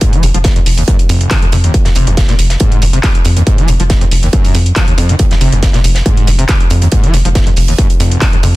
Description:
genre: driving peak-time techno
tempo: 139 BPM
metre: 4/4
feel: straight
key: F phrygian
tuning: A4 = 442 Hz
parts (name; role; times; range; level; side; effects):
- screaming distorted acid line; riff; 0.0-8.5 s; F1 to F3; -17 LUFS; equal; distortion, ensemble chorus, sidechain pumping, digital delay
- electronic kick drum; drums; 0.0-8.3 s; none; -11 LUFS; equal; distortion
- techno drum kit; drums; 0.0-8.5 s; handclaps, hi-hat; -19 LUFS; equal; sidechain pumping on hats
- tight metal drum kit; drums; 0.0-8.5 s; hi-hat, snare drum; -24 LUFS; right 3 dB; sidechain pumping on hats, high-pass filter on hats, high-pass filter on snare, high-pass filter on room
- tight sequencer bass; bass; 0.2-8.6 s; F1 to F2; -11 LUFS; equal; sidechain pumping
room: digital ambience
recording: dense, heavily limited modern master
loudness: -8 LUFS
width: side -18 dB against mid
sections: 0.0-8.6 A section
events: none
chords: none

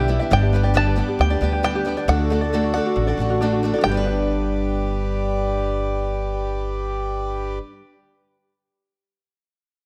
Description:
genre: folk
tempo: 136 BPM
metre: 4/4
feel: straight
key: G major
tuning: A4 = 441 Hz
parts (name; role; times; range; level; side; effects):
- bluegrass banjo; melody; 0.0-7.6 s; F#5 to A5; -27 LUFS; equal; analog delay
- picked old ladder-braced acoustic guitar; accompaniment; 0.0-7.7 s; G2 to B4; -28 LUFS; equal; analog delay
- pedal harmonium; sustained chords; 0.0-7.6 s; D3 to D5; -30 LUFS; equal; none
- ukulele; arpeggios; 0.0-7.6 s; D4 to E5; -29 LUFS; equal; analog delay
- upright bass; bass; 0.0-7.6 s; G1 to D2; -25 LUFS; equal; none
room: light reverb, small room ambience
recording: echo-heavy mix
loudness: -21 LUFS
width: mono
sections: 0.0-3.9 A section; 3.9-7.4 B section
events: none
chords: 0.3 G; 2.1 D; 3.9 G

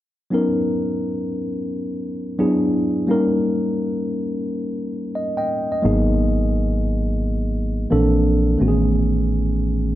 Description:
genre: R&B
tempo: 87 BPM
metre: 4/4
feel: swing 63% on 16ths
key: B major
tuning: A4 = 440 Hz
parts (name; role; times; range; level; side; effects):
- tine electric piano; accompaniment; 0.3-10.0 s; D#3 to G5; -20 LUFS; equal; none
- solid FM bass; bass; 5.9-10.0 s; G#1 to A#1; -20 LUFS; equal; none
room: moderate echo chamber reverb, RT60 1.9 s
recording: dark, warm production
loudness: -18 LUFS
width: side -14 dB against mid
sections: 0.3-10.0 A section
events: none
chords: 0.3 Bmaj9; 2.4 E9; 3.1 D#7; 5.8 G#m9; 7.9 A#maj9#11; 8.6 Amaj9#11

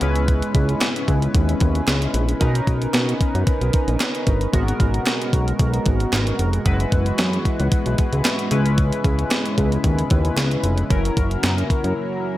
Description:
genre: early-eighties boogie funk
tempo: 113 BPM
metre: 4/4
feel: straight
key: unclear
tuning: A4 = 442 Hz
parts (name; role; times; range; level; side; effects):
- chorused polysynth; accompaniment; 0.0-12.4 s; F#3 to B4; -24 LUFS; left 1 dB; none
- string machine, full ensemble; sustained chords; 0.0-12.4 s; B2 to F#4; -30 LUFS; equal; ensemble chorus
- fat analog bass; bass; 0.0-11.9 s; E#1 to B2; -20 LUFS; equal; none
- crisp 8-bit digital drum machine; drums; 0.0-12.0 s; hi-hat, kick drum, snare drum; -20 LUFS; equal; overdrive, gated reverb
- group handclap; percussion; 0.8-11.6 s; none; -30 LUFS; right 3 dB; none
room: digital ambience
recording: none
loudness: -17 LUFS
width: side -15 dB against mid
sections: 0.0-12.4 A section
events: break 12.0-12.4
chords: 0.0 C#m7; 2.4 Bmaj9; 4.5 G#m9; 6.7 F#9sus4; 8.5 C#m7; 10.9 F#7

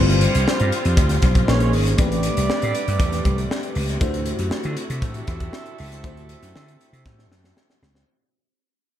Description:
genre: polished 1980s jazz-funk pop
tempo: 118 BPM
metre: 4/4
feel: straight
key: unclear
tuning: A4 = 440 Hz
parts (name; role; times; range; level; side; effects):
- clear horn section; second line; 0.0-7.8 s; G3 to E5; -29 LUFS; right 5 dB; ping-pong delay
- FM electric piano with soft pad layer; accompaniment; 0.0-8.1 s; G3 to C5; -26 LUFS; left 2 dB; lush chorus
- rich studio string section; sustained chords; 0.0-8.0 s; C3 to F#4; -31 LUFS; equal; none
- vintage slap bass; bass; 0.0-8.0 s; G1 to D3; -21 LUFS; equal; none
- crisp fusion drum kit; drums; 0.1-8.1 s; hi-hat, kick drum, snare drum; -22 LUFS; equal; none
room: light reverb, small room ambience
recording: dark, warm production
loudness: -18 LUFS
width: side -11 dB against mid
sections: 0.0-8.1 A section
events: fade-out 0.0-8.1; drum fill 7.1-8.1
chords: 0.0 G7sus4; 1.5 Bbm11; 2.0 Am11; 4.0 D9

